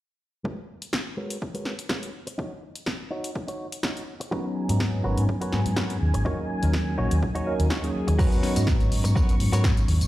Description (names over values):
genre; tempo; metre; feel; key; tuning
filtered disco house; 124 BPM; 4/4; swing 53% on 16ths; G# minor; A4 = 440 Hz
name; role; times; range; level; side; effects
direct-recorded clean electric guitar; riff; 0.4-9.9 s; G#3 to C#5; -34 LUFS; equal; sidechain pumping, low-pass filter
electronic kick drum; drums; 0.5-9.7 s; none; -26 LUFS; equal; high-pass filter on kick
punchy analog drum machine; drums; 0.8-10.1 s; crash cymbal, hi-hat, snare drum, tambourine; -32 LUFS; equal; sidechain pumping on hats, sidechain pumping on cymbals, sidechain pumping on perc
tine electric piano; accompaniment; 4.3-10.1 s; F#3 to A#5; -28 LUFS; equal; medium stereo tremolo, phaser, sidechain pumping, low-pass filter
string machine, full ensemble; sustained chords; 4.3-10.1 s; G#5 to C#6; -38 LUFS; equal; ensemble chorus, sidechain pumping, low-pass filter
hollow-body short-scale fingered electric bass; bass; 4.7-10.1 s; G#1 to G#2; -23 LUFS; equal; sidechain pumping, low-pass filter
room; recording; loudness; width
little or no reverb; played on a big sound system in a bare room, large studio reverb; -23 LUFS; side -16 dB against mid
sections
0.5-8.2 A section; 8.2-10.1 B section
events
filter sweep 0.5-8.2, 8.2-10.1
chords
0.5 G#m11; 2.4 D#m7; 4.3 G#m11; 6.3 D#m7; 8.2 G#m11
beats
| 0.45 0.94 1.42 1.90 | 2.39 2.87 3.35 3.84 | 4.32 4.81 5.29 5.77 | 6.26 6.74 7.22 7.71 | 8.19 8.68 9.16 9.64